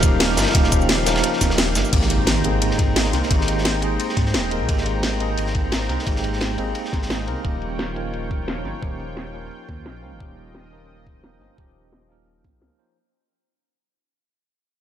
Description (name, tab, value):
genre	liquid drum and bass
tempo	174 BPM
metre	4/4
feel	swing 54% on 16ths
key	Ab major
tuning	A4 = 440 Hz
part	tine electric piano	accompaniment	0.0-13.0 s	F3 to C5	-25 LUFS	right 1 dB	medium stereo tremolo, low-pass filter, dub echo
part	lush unison pad	sustained chords	0.0-12.9 s	Db3 to Bb5	-31 LUFS	left 1 dB	chorus, sidechain pumping
part	dark detuned saw bass	bass	0.0-12.7 s	Eb1 to Ab2	-25 LUFS	equal	none
part	crunchy breakbeat drum kit	drums	0.0-7.4 s	ride cymbal, snare drum	-28 LUFS	equal	high-pass filter on cymbals, studio reverb, high-pass filter on snare, high-pass filter on room
part	electronic kick drum	drums	0.0-12.5 s	none	-21 LUFS	equal	studio reverb
part	garage drum kit	drums	0.0-12.9 s	cabasa, crash cymbal, hi-hat, rim click, snare drum	-24 LUFS	equal	low-pass filter on snare, studio reverb, low-pass filter on hats, low-pass filter on perc, low-pass filter on cymbals
part	impact	sound effects	1.9-3.3 s	none	-28 LUFS	equal	none
room	light reverb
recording	none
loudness	-18 LUFS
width	side -10 dB against mid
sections	0.0-1.9 A section; 1.9-13.0 B section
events	drop 0.0-1.9; kick drops out 1.6-1.9; fade-out 1.9-13.0; impact 1.9-3.3; filter sweep on drum 1.9-13.0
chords	0.0 Eb9; 1.9 Abmaj9; 7.4 Eb9